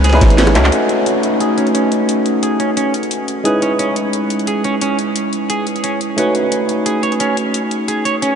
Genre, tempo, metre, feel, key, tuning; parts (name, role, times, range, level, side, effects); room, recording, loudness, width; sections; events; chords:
liquid drum and bass; 176 BPM; 4/4; straight; A4 = 440 Hz
overdriven tine electric piano; accompaniment; 0.0-8.4 s; G#3 to C#5; -16 LUFS; equal; phaser, tape echo
semi-hollow electric guitar; arpeggios; 0.0-8.4 s; C#4 to C#5; -20 LUFS; right 2 dB; wide subtle chorus, low-pass filter, analog delay
saturated sub bass; bass; 0.0-0.7 s; G#1 to C#2; -13 LUFS; equal
crunchy breakbeat drum kit; drums; 0.0-0.7 s; ride cymbal, snare drum; -27 LUFS; left 1 dB
drum and bass drum kit; drums; 0.0-8.3 s; handclaps, hi-hat, rim click, snare drum; -21 LUFS; left 1 dB
bongos; percussion; 0.1-0.5 s; barely audible
wet huge ambient reverb, RT60 7.4 s; dreamy mix soaked in reverb, nothing above 10.5 kHz; -13 LUFS; side -7 dB against mid
0.7-8.4 A section
drum fill 0.6; filter sweep on clean electric guitar 0.7-8.4
0.0 C#m7; 0.7 B9; 3.5 C#m7; 6.2 B9